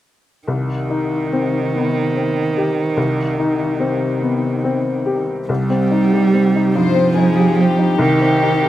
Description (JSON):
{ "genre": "neoclassical piano and strings", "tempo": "48 BPM (dotted quarters)", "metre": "6/8", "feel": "rubato", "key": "C harmonic minor", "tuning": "A4 = 442 Hz", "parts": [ { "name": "warm cello", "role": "second line", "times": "0.5-8.7 s", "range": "Eb3 to G3", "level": "-18 LUFS", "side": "right 4 dB", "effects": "none" }, { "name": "clear upright piano", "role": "accompaniment", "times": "0.5-8.7 s", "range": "C2 to G4", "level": "-18 LUFS", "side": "left 3 dB", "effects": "none" }, { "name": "warm chamber violin section", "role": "melody", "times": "6.8-8.7 s", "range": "G4 to C5", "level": "-20 LUFS", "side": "left 5 dB", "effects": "slapback echo" } ], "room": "little or no reverb", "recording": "recorded outdoors, with no room sound", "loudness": "-15 LUFS", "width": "side -13 dB against mid", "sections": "0.5-5.5 A section; 5.5-8.7 B section", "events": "none", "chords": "0.5 Cm", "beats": "| 0.47 1.74 | 2.97 4.21 | 5.49 6.75 | 7.99" }